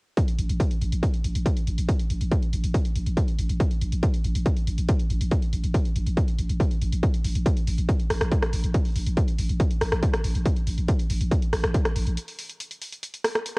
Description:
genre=driving peak-time techno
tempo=140 BPM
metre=4/4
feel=straight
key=unclear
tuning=A4 = 440 Hz
part: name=electronic kick drum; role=drums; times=0.2-11.8 s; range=none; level=-23 LUFS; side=equal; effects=overdrive, studio reverb, cassette tape
part: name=techno drum kit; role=drums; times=0.2-13.6 s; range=hi-hat, rim click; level=-31 LUFS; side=equal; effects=overdrive, sidechain pumping on hats, studio reverb, cassette tape
part: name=growling 808-style bass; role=bass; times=0.4-12.2 s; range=A1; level=-25 LUFS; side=equal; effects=sidechain pumping, low-pass filter
room=little or no reverb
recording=home recording on cassette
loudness=-22 LUFS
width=side -31 dB against mid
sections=0.2-13.6 A section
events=break 12.2-13.6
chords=none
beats=| 0.17 0.60 1.03 1.46 | 1.89 2.31 2.74 3.17 | 3.60 4.03 4.46 4.89 | 5.32 5.74 6.17 6.60 | 7.03 7.46 7.89 8.31 | 8.74 9.17 9.60 10.03 | 10.46 10.89 11.31 11.74 | 12.17 12.60 13.03 13.46

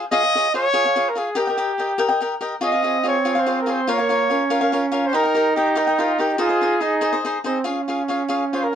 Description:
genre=mexican folk, mariachi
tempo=95 BPM (dotted quarters)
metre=6/8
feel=rubato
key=Ab major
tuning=A4 = 441 Hz
part: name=cavaquinho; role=accompaniment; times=0.0-8.8 s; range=Eb4 to G5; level=-22 LUFS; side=left 3 dB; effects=none
part: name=warm trumpet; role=melody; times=0.1-8.8 s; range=Eb4 to Eb5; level=-20 LUFS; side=equal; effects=none
part: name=mellow trumpet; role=second line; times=2.6-8.8 s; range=Bb3 to F4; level=-22 LUFS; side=right 4 dB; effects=none
room=moderate studio ambience, RT60 0.5 s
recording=dark, warm production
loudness=-18 LUFS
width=side -9 dB against mid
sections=0.0-7.7 A section; 7.7-8.8 B section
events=none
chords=0.1 Db; 1.4 Eb; 2.6 Db; 3.9 Bbm; 5.1 Eb; 6.4 Ab; 7.7 Db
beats=| 0.12 0.74 | 1.37 2.00 | 2.63 3.26 | 3.89 4.51 | 5.13 5.76 | 6.39 7.03 | 7.67 8.31

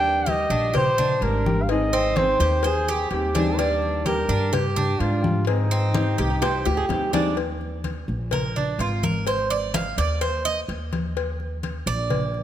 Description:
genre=latin, Cuban son and guajira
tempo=127 BPM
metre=4/4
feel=straight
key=Eb major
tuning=A4 = 440 Hz
part: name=trumpet with bucket mute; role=melody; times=0.0-6.9 s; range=Eb4 to G5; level=-24 LUFS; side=equal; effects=none
part: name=nylon-string guitar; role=accompaniment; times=0.0-7.4 s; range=Eb3 to Ab4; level=-29 LUFS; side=left 3 dB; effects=none
part: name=Cuban tres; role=arpeggios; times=0.0-12.4 s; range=C4 to F5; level=-26 LUFS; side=right 4 dB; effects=none
part: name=upright bass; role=bass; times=0.0-12.4 s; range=Ab1 to Ab2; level=-26 LUFS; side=equal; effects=none
part: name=congas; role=percussion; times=0.0-12.4 s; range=none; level=-29 LUFS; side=left 1 dB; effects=none
part: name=cowbell and bongos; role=percussion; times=0.3-12.3 s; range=none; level=-31 LUFS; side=left 8 dB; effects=none
part: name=flamenco guitar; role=second line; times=6.0-7.3 s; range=Eb4 to Ab4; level=-30 LUFS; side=right 4 dB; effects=none
room=moderate concert hall reverb, RT60 2.2 s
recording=close, detailed microphones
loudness=-20 LUFS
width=side -11 dB against mid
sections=0.0-7.4 A section; 7.4-12.4 B section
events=drum fill 6.4-7.4; Cuban tres solo 7.4-12.4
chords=0.0 Ebmaj7; 1.7 Abmaj7; 3.6 Ebmaj7; 5.5 Abmaj7; 7.4 Eb5; 9.3 Ab5; 11.2 Eb5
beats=0.27 0.74 1.22 | 1.69 2.16 2.63 3.11 | 3.58 4.06 4.53 5.00 | 5.48 5.95 6.42 6.90 | 7.37 7.85 8.32 8.79 | 9.27 9.74 10.22 10.69 | 11.16 11.64 12.11

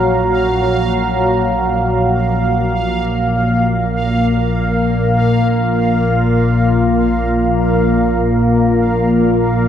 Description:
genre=dark ambient drone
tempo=free time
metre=none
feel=none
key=unclear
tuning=A4 = 440 Hz
part: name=deep dark ambient pad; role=sustained chords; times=0.0-9.7 s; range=Bb3 to Bb5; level=-16 LUFS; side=left 1 dB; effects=chorus, built-in reverb
part: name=organ-like drone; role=drone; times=0.0-9.7 s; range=Bb1 to Bb2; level=-16 LUFS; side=equal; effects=ensemble chorus, built-in reverb
part: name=bubbling stepped-filter texture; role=texture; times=0.0-9.7 s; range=F5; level=-21 LUFS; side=right 2 dB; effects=chorus, built-in reverb
room=wet cathedral reverb, RT60 5.7 s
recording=in a vast, echoing space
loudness=-12 LUFS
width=side -9 dB against mid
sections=0.0-9.7 A section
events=none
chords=0.0 Gb; 2.4 Bb5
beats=free time

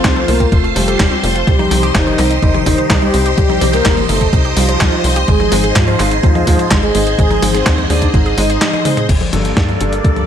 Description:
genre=italo disco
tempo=126 BPM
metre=4/4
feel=straight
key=unclear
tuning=A4 = 440 Hz
part: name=mellow synth brass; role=melody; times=0.0-9.0 s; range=Eb3 to Eb5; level=-18 LUFS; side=equal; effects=chorus, ping-pong delay
part: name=phased string machine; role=sustained chords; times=0.0-10.3 s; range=G3 to C6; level=-19 LUFS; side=right 1 dB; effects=ensemble chorus, phaser
part: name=wide unison pluck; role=arpeggios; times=0.0-9.1 s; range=F3 to C5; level=-24 LUFS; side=right 6 dB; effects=cassette tape, digital delay
part: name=dark concert grand piano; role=stabs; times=0.0-10.2 s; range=G2 to C5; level=-22 LUFS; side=left 2 dB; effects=none
part: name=tight sequencer bass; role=bass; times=0.0-10.2 s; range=F1 to Ab2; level=-17 LUFS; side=equal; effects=tube saturation
part: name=clean 12-bit digital drum machine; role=drums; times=0.0-10.3 s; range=crash cymbal, handclaps, hi-hat, snare drum, toms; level=-18 LUFS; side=left 2 dB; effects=gated reverb
part: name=electronic kick drum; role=drums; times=0.0-10.1 s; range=none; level=-15 LUFS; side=equal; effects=none
room=little or no reverb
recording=none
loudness=-11 LUFS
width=side -9 dB against mid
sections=0.0-9.1 A section; 9.1-10.3 B section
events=drum fill 8.6-9.1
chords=0.0 F; 1.5 Cm; 5.3 Ab; 9.1 Gmadd9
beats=0.04 0.52 1.00 | 1.47 1.95 2.42 2.90 | 3.38 3.85 4.33 4.81 | 5.28 5.76 6.24 6.71 | 7.19 7.66 8.14 8.62 | 9.09 9.57 10.04

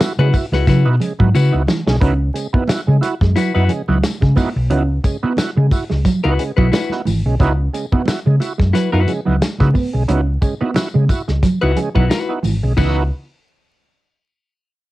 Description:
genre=funk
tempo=89 BPM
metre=4/4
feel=swing 56% on 16ths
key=C# minor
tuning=A4 = 440 Hz
part: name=overdriven tonewheel organ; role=stabs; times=0.0-13.0 s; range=C#3 to F#4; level=-23 LUFS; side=right 4 dB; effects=chorus vibrato, slow rotary speaker, cassette tape
part: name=hollow-body short-scale fingered electric bass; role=bass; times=0.0-13.1 s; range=G#1 to C#3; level=-15 LUFS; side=equal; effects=none
part: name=warm soul drum kit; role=drums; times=0.0-13.0 s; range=crash cymbal, hi-hat, kick drum, snare drum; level=-18 LUFS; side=equal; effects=cassette tape
part: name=tambourine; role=percussion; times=0.0-13.1 s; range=none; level=-36 LUFS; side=left 8 dB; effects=none
part: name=clean electric guitar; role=accompaniment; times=0.2-13.0 s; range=E4 to B4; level=-21 LUFS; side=left 6 dB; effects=cassette tape
part: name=mellow electric guitar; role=riff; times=0.2-13.0 s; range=E3 to C#4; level=-22 LUFS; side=right 3 dB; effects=cassette tape
part: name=congas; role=percussion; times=0.3-13.1 s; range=none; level=-27 LUFS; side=right 4 dB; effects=none
room=light reverb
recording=home recording on cassette, vinyl crackle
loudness=-14 LUFS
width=side -17 dB against mid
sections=0.0-2.0 A section; 2.0-12.8 B section; 12.8-14.9 C section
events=drum fill 1.3-2.0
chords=0.0 C#m11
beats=0.00 0.67 1.34 | 2.02 2.69 3.36 4.03 | 4.71 5.38 6.05 6.72 | 7.39 8.07 8.74 9.41 | 10.09 10.76 11.43 12.11 | 12.78

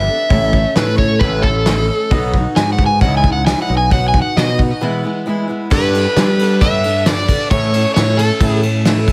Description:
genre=folk rock and heartland rock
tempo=134 BPM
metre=4/4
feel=straight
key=unclear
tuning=A4 = 437 Hz
part: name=overdriven slide guitar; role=melody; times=0.0-8.6 s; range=A4 to G#5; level=-20 LUFS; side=equal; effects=digital delay
part: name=bright upright piano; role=accompaniment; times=0.0-9.1 s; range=C#4 to E5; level=-29 LUFS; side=equal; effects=none
part: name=picked steel-string acoustic guitar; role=accompaniment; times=0.0-9.1 s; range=E2 to A4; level=-24 LUFS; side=equal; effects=none
part: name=modern bright fingered electric bass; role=bass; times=0.0-9.1 s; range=A1 to G3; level=-19 LUFS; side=equal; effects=none
part: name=soft brush drum kit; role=drums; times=0.3-9.1 s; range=crash cymbal, hi-hat, kick drum, snare drum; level=-19 LUFS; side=equal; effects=none
room=light reverb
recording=heavily compressed radio sound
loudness=-15 LUFS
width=mono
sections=0.0-5.7 A section; 5.7-9.1 B section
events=electric slide guitar solo 0.0-5.7; break 4.8-5.7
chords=0.3 A; 2.1 B; 3.0 C#madd9; 3.7 B; 4.8 E; 5.7 Gadd9; 7.5 A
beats=| 0.30 0.76 1.21 1.66 | 2.12 2.57 3.02 3.47 | 3.92 4.37 4.82 5.27 | 5.71 6.16 6.61 7.06 | 7.51 7.96 8.40 8.85

